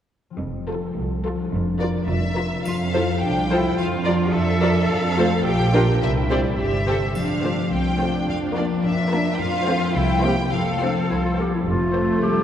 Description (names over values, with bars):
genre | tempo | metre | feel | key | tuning
cinematic, playful, whimsical film cue | 107 BPM | 2/4 | straight | F major | A4 = 443 Hz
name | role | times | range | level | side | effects
concert harp | arpeggios | 0.3-12.4 s | Bb2 to D5 | -25 LUFS | left 3 dB | none
rich studio cello section | bass | 0.4-12.4 s | C2 to A4 | -27 LUFS | right 2 dB | none
rich studio double bass section | bass | 0.4-12.1 s | F1 to F2 | -25 LUFS | right 2 dB | none
rich studio violin section | melody | 0.7-12.2 s | C5 to G5 | -27 LUFS | left 2 dB | none
dark studio violin section | second line | 0.7-12.2 s | E4 to D5 | -28 LUFS | left 1 dB | none
warm symphonic viola section | accompaniment | 0.7-12.4 s | F3 to F4 | -28 LUFS | right 1 dB | none
triangle | percussion | 2.7-3.7, 7.2-8.2 s | none | -46 LUFS | right 1 dB | none
bright clarinet | second line | 10.8-12.4 s | D4 to G4 | -24 LUFS | left 1 dB | none
mellow French horn section | sustained chords | 11.7-12.4 s | A3 to C4 | -29 LUFS | left 1 dB | none
room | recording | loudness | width
wet church reverb, RT60 3.4 s | dark, warm production | -19 LUFS | side -9 dB against mid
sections
0.4-2.7 A section; 2.7-11.7 B section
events
none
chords
0.4 F; 1.5 Bb/F; 2.7 F; 3.8 Bb/F; 4.9 F; 5.5 Gm/Bb; 6.0 C; 7.2 F; 8.3 Bb/F; 9.4 F; 10.0 C7; 10.5 F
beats
| 0.41 0.98 | 1.53 2.08 | 2.66 3.22 | 3.79 4.34 | 4.89 5.45 | 6.01 6.59 | 7.16 7.72 | 8.28 8.84 | 9.39 9.95 | 10.52 11.10 | 11.68 12.23